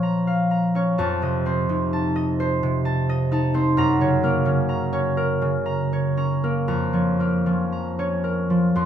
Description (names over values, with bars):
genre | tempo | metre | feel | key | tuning
classical, solo harp piece | 57-66 BPM | 3/4 | rubato | Bb minor | A4 = 441 Hz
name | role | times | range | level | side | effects
concert harp | solo | 0.0-8.9 s | F2 to C6 | -20 LUFS | equal | none
room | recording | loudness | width
light reverb | minimal, uncompressed stereo recording | -20 LUFS | side -9 dB against mid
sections
0.0-8.9 A section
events
none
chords
0.0 Bbm; 1.0 F7; 3.8 Gb; 6.7 Bbm/F